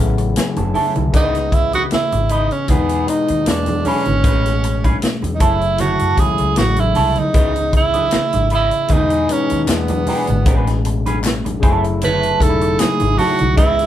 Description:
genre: lush 1970s-style soul.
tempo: 77 BPM.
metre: 4/4.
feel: swing 54% on 16ths.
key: unclear.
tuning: A4 = 440 Hz.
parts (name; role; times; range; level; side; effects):
breathy tenor saxophone; melody; 0.0-13.9 s; B3 to B4; -19 LUFS; right 4 dB; none.
overdriven tine electric piano; accompaniment; 0.0-13.9 s; B2 to A5; -21 LUFS; left 5 dB; none.
vintage muted fingered electric bass; bass; 0.0-13.9 s; E1 to F#2; -20 LUFS; equal; none.
electric guitar at the edge of break-up; riff; 0.2-13.7 s; C#4 to D#5; -23 LUFS; right 3 dB; wah.
vintage drum kit; drums; 0.2-13.9 s; hi-hat, kick drum, snare drum; -18 LUFS; equal; none.
congas; percussion; 0.6-13.9 s; none; -26 LUFS; right 3 dB; none.
group handclap; percussion; 8.1-13.0 s; none; -30 LUFS; left 3 dB; none.
room: moderate studio reverb, RT60 0.6 s.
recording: band playing live in one room.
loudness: -14 LUFS.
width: side -12 dB against mid.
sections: 0.0-13.9 A section.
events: tine electric piano fill 0.0-1.1; tenor saxophone solo 0.0-13.9.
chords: 0.0 F#m7; 1.1 C#m9; 2.7 Emaj7; 3.5 E7; 4.2 Amaj9; 5.4 F#m7; 7.4 C#m9; 8.9 Emaj7; 9.7 E7; 10.5 Amaj9; 11.6 F#m7.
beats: 0.37 | 1.14 1.92 2.69 3.47 | 4.25 5.02 5.80 6.58 | 7.35 8.13 8.91 9.69 | 10.46 11.24 12.02 12.80 | 13.57.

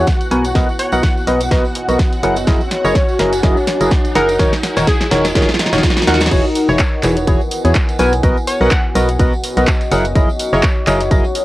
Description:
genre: piano house.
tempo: 125 BPM.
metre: 4/4.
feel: swing 56% on 16ths.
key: F# mixolydian.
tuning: A4 = 442 Hz.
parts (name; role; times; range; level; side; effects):
analog string pad; sustained chords; 0.0-6.3 s; F#4 to F#5; -27 LUFS; equal; ensemble chorus, sidechain pumping, cassette tape.
percussive organ stab; riff; 0.0-11.2 s; D#3 to G#5; -17 LUFS; equal; wide subtle chorus, cassette tape, sidechain pumping, tape echo.
organ-like FM bass; bass; 0.0-11.2 s; D#1 to E2; -19 LUFS; equal; sidechain pumping.
riser; sound effects; 1.2-6.3 s; none; -25 LUFS; right 1 dB; none.
deep dark ambient pad; texture; 0.0-11.4 s; B3 to A#5; -22 LUFS; left 1 dB; chorus, built-in reverb, sidechain pumping, cassette tape.
electronic kick drum; drums; 0.1-11.2 s; none; -15 LUFS; equal; none.
house drum kit; drums; 0.1-11.4 s; crash cymbal, handclaps, hi-hat, snare drum; -20 LUFS; equal; none.
tambourine; percussion; 0.1-11.4 s; none; -33 LUFS; right 5 dB; none.
glassy wavetable pluck; melody; 0.8-11.2 s; G#4 to F#5; -23 LUFS; equal; chorus, cassette tape, tape echo.
room: moderate booth ambience, RT60 0.2 s.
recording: home recording on cassette.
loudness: -12 LUFS.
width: side -17 dB against mid.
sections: 0.0-6.3 A section; 6.3-11.4 B section.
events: build-up 0.0-6.3; drum fill 0.0-6.3; filter sweep on synth stab 0.0-6.3; riser 1.2-6.3; drop 6.3-11.4.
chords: 0.3 Bmaj7; 2.2 F#13; 4.4 D#m7; 6.3 E69; 8.0 Bmaj7; 9.9 F#13.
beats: 0.07 | 0.55 1.03 1.51 1.99 | 2.47 2.95 3.43 3.91 | 4.39 4.87 5.35 5.83 | 6.31 6.79 7.27 7.75 | 8.23 8.71 9.19 9.67 | 10.15 10.63 11.11.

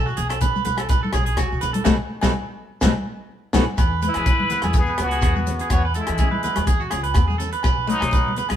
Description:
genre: highlife guitar band.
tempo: 125 BPM.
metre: 4/4.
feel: swing 54% on 16ths.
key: E major.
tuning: A4 = 440 Hz.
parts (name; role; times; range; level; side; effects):
picked steel-string acoustic guitar; accompaniment; 0.0-8.5 s; G#3 to D#4; -27 LUFS; left 6 dB; none.
electric guitar at the edge of break-up; arpeggios; 0.0-8.6 s; F#4 to C#5; -25 LUFS; right 6 dB; none.
upright bass; bass; 0.0-8.6 s; B1 to E3; -26 LUFS; equal; none.
shekere; percussion; 0.1-8.6 s; none; -34 LUFS; equal; none.
tight funk drum kit; drums; 0.2-8.6 s; hi-hat, kick drum, rim click, snare drum; -22 LUFS; equal; none.
congas; percussion; 0.2-8.6 s; none; -28 LUFS; left 1 dB; none.
agogo bells; percussion; 0.3-8.6 s; none; -33 LUFS; left 6 dB; none.
trumpet with plunger mute; melody; 4.1-8.3 s; D#4 to B4; -26 LUFS; left 4 dB; none.
clear trumpet; second line; 4.1-8.3 s; F#3 to E4; -30 LUFS; left 2 dB; none.
room: moderate stone room reverb, RT60 1.3 s.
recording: band playing live in one room.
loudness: -18 LUFS.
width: side -10 dB against mid.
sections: 0.0-3.8 A section; 3.8-8.6 B section.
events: band accent 1.9-3.8; drum fill 3.2-3.8.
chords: 0.0 B7; 3.8 Eadd9; 7.6 B7.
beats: 0.43 0.91 1.39 | 1.87 2.35 2.83 3.31 | 3.79 4.27 4.75 5.24 | 5.72 6.20 6.68 7.16 | 7.65 8.13.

